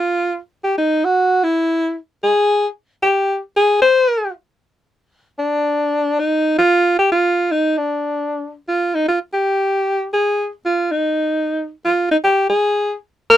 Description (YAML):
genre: jazz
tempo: 152 BPM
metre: 4/4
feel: swing 66% on 8ths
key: Eb major from 8.7 s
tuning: A4 = 440 Hz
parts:
  - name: warm alto saxophone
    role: solo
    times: 0.0-13.4 s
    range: D4 to C5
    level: -15 LUFS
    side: equal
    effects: none
room: moderate booth ambience, RT60 0.2 s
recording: none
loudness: -16 LUFS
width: side -12 dB against mid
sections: 0.0-8.7 A section; 8.7-13.4 B section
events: none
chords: none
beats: 0.37 | 0.77 1.16 1.56 1.96 | 2.35 2.75 3.14 3.54 | 3.93 4.33 4.72 5.12 | 5.51 5.91 6.30 6.70 | 7.09 7.49 7.88 8.28 | 8.67 9.07 9.46 9.86 | 10.25 10.65 11.04 11.44 | 11.84 12.23 12.63 13.03